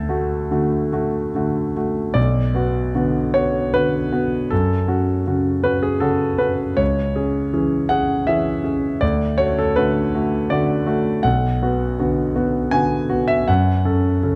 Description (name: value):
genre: neoclassical minimalist piano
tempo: 70-83 BPM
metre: 3/4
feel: rubato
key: B dorian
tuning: A4 = 440 Hz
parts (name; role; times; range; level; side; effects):
- warm concert grand piano; solo; 0.0-14.4 s; B1 to A5; -20 LUFS; equal; none
room: moderate recital hall reverb, RT60 1.7 s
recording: close, detailed microphones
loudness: -20 LUFS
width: mono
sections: 0.0-2.2 A section; 2.2-14.4 B section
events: none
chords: 0.0 D; 2.2 Bm; 4.5 F#m; 6.8 C#m; 9.0 D; 11.2 Bm; 13.5 F#m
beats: 0.52 1.35 | 2.17 2.96 3.74 | 4.51 5.27 6.03 | 6.80 7.54 8.28 | 9.02 9.77 10.51 | 11.25 12.00 12.74 | 13.48 14.22